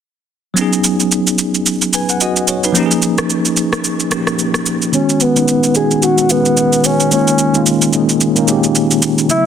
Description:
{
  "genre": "amapiano",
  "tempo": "110 BPM",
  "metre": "4/4",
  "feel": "swing 58% on 16ths",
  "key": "unclear",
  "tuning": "A4 = 437 Hz",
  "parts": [
    { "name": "bell-like tine electric piano", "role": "accompaniment", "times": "0.5-9.5 s", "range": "C#3 to G#5", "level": "-14 LUFS", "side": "equal", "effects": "fast stereo tremolo, low-pass filter" },
    { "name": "electronic shaker and rim click", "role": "drums", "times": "0.6-9.4 s", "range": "none", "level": "-17 LUFS", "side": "right 3 dB", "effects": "soft clipping on snare" },
    { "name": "warm alto saxophone", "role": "melody", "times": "4.9-9.5 s", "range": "B3 to G#4", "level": "-15 LUFS", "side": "equal", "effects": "low-pass filter, tape echo" }
  ],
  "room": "moderate lush hall reverb, RT60 2.4 s",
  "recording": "dense, heavily limited modern master",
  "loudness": "-11 LUFS",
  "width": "side -8 dB against mid",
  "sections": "0.6-4.9 A section; 4.9-9.5 B section",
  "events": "filter sweep 4.9-9.5",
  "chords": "0.6 C#9sus4; 2.8 D#9sus4; 4.9 C#9sus4; 7.1 D#9sus4",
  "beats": "| 0.57 1.11 1.66 2.21 | 2.75 3.30 3.84 4.39 | 4.93 5.48 6.02 6.57 | 7.11 7.66 8.21 8.75 | 9.30"
}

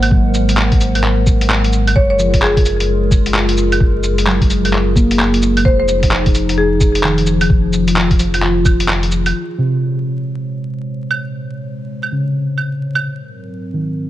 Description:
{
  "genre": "future garage",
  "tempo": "130 BPM",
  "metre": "4/4",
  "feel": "swing 63% on 16ths",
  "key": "Bb minor",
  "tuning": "A4 = 442 Hz",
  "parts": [
    { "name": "muted felt-like synth keys", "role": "accompaniment", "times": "0.0-14.1 s", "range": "C3 to Bb3", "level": "-21 LUFS", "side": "right 1 dB", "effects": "chorus, sidechain pumping, low-pass filter, tape echo" },
    { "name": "warbly tape-like pad", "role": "sustained chords", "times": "0.0-14.1 s", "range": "Ab2 to Gb5", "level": "-20 LUFS", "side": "left 2 dB", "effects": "chorus, built-in reverb, sidechain pumping" },
    { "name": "warm sub bass", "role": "bass", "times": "0.0-9.3 s", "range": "F1 to Ab1", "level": "-18 LUFS", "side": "equal", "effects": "sidechain pumping" },
    { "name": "lo-fi sampler-style drum kit", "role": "drums", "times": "0.0-13.0 s", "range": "cabasa, claves, handclaps, hi-hat", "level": "-18 LUFS", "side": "right 1 dB", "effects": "studio reverb" },
    { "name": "electronic kick drum", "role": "drums", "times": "0.1-8.8 s", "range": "none", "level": "-13 LUFS", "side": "equal", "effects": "studio reverb" },
    { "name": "marimba with hard mallets", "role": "melody", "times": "2.0-2.8, 5.7-7.2 s", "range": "Ab4 to Db5", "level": "-18 LUFS", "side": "left 1 dB", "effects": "tape echo" }
  ],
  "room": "light reverb",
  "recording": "vinyl crackle, nothing above 11.0 kHz",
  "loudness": "-12 LUFS",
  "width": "side -14 dB against mid",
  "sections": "0.0-9.3 A section; 9.3-14.1 B section",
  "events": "filter sweep on synth keys 0.0-9.3",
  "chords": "0.0 Ab9; 2.0 Gbmaj9; 5.7 Fm7; 9.3 Bbm9; 13.0 Ab9",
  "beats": "| 0.11 0.57 1.04 1.50 | 1.96 2.42 2.88 3.35 | 3.81 4.27 4.73 5.19 | 5.65 6.11 6.58 7.04 | 7.50 7.96 8.42 8.88 | 9.35 9.81 10.27 10.73 | 11.19 11.65 12.11 12.57 | 13.04 13.50 13.96"
}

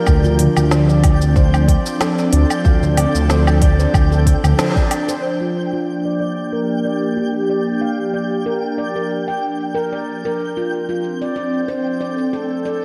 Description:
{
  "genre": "organic downtempo",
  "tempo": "93 BPM",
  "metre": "4/4",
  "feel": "swing 55% on 16ths",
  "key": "G minor",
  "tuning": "A4 = 441 Hz",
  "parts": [
    { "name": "airy breathy pad", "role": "sustained chords", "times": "0.0-12.8 s", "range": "F3 to D5", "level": "-23 LUFS", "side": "equal", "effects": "chorus, sidechain pumping" },
    { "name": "handpan", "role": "arpeggios", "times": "0.0-12.8 s", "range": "F4 to G5", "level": "-26 LUFS", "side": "equal", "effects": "low-pass filter, analog delay" },
    { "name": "twinkling granular texture", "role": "texture", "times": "0.0-12.8 s", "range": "G5", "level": "-34 LUFS", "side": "equal", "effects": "built-in reverb, ensemble chorus" },
    { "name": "smooth synth bass", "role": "bass", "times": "0.1-4.5 s", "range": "D2", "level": "-17 LUFS", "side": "equal", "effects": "sidechain pumping" },
    { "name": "electronic kick drum", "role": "drums", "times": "0.1-4.9 s", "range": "none", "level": "-17 LUFS", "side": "equal", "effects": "overdrive" },
    { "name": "organic electronic drum kit", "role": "drums", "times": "0.1-12.8 s", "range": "hi-hat, shaker, snare drum, woodblock", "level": "-27 LUFS", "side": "equal", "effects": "low-pass filter on hats, low-pass filter on perc, low-pass filter on snare, low-pass filter on room" },
    { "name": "darbuka", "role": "percussion", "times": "0.2-5.2 s", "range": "none", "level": "-27 LUFS", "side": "equal", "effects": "none" }
  ],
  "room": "moderate lush hall reverb, RT60 2.7 s",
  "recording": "dreamy mix soaked in reverb",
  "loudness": "-17 LUFS",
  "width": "mono",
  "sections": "0.0-5.2 A section; 5.2-12.8 B section",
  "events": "band accent 4.6-4.9; filter sweep on handpan 5.2-12.8",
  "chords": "0.1 Dm7; 5.2 Gm7; 10.4 Dm7",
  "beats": "| 0.07 0.72 1.36 2.01 | 2.65 3.30 3.94 4.59 | 5.23 5.88 6.52 7.17 | 7.81 8.46 9.10 9.75 | 10.39 11.04 11.69 12.33"
}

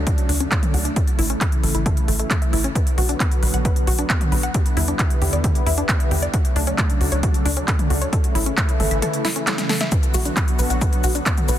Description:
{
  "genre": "uplifting trance",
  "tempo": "134 BPM",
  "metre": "4/4",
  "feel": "straight",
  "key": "B minor",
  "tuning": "A4 = 440 Hz",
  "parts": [
    { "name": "tight sequencer bass", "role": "bass", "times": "0.0-11.6 s", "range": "A1 to E2", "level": "-22 LUFS", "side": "equal", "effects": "sidechain pumping" },
    { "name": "wide unison pluck", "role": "arpeggios", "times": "0.1-11.5 s", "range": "A3 to F#5", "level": "-27 LUFS", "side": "left 2 dB", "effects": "sidechain pumping, digital delay" },
    { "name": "big-room dance drum kit", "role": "drums", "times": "0.1-11.6 s", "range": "handclaps, hi-hat, shaker, snare drum, toms", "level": "-25 LUFS", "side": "equal", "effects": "overdrive" },
    { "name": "electronic kick drum", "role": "drums", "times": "0.1-11.4 s", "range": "none", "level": "-20 LUFS", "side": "equal", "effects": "none" }
  ],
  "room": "little or no reverb",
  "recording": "dense, heavily limited modern master",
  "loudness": "-17 LUFS",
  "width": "side -12 dB against mid",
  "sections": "0.0-11.6 A section",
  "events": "drum fill 9.2-9.9",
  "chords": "0.0 Dmaj7; 1.0 A; 2.8 Bm; 4.5 Em7; 6.3 Dmaj7; 8.1 A; 9.9 Bm",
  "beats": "0.07 0.52 | 0.96 1.41 1.86 2.31 | 2.75 3.20 3.65 4.10 | 4.54 4.99 5.44 5.89 | 6.34 6.78 7.23 7.68 | 8.13 8.57 9.02 9.47 | 9.92 10.37 10.81 11.26"
}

